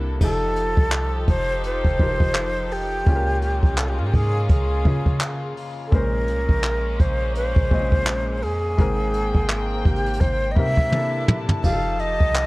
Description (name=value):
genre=contemporary R&B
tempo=84 BPM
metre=4/4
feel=swing 58% on 16ths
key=unclear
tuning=A4 = 441 Hz
part: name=felt-muted upright piano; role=accompaniment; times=0.0-12.5 s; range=Ab2 to Eb5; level=-30 LUFS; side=left 3 dB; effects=none
part: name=warm studio string section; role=sustained chords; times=0.0-12.5 s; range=C3 to A5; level=-32 LUFS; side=left 1 dB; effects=none
part: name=soft 808-style bass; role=bass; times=0.0-12.5 s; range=F1 to Db3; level=-25 LUFS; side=equal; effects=none
part: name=breathy mellow silver concert flute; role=melody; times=0.2-12.5 s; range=F4 to F5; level=-25 LUFS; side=equal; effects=none
part: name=jazz brush drum kit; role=drums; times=0.2-12.5 s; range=crash cymbal, handclaps, hi-hat, kick drum, toms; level=-20 LUFS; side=equal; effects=none
room=small room reverb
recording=worn, warbling old tape, cassette tape, warbly pitch drift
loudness=-19 LUFS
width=side -21 dB against mid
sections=0.2-12.5 A section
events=drum fill 10.9-11.6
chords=0.2 F9; 3.1 Db6; 5.9 Bbm9; 8.8 Abmaj9; 10.9 C13; 11.6 F9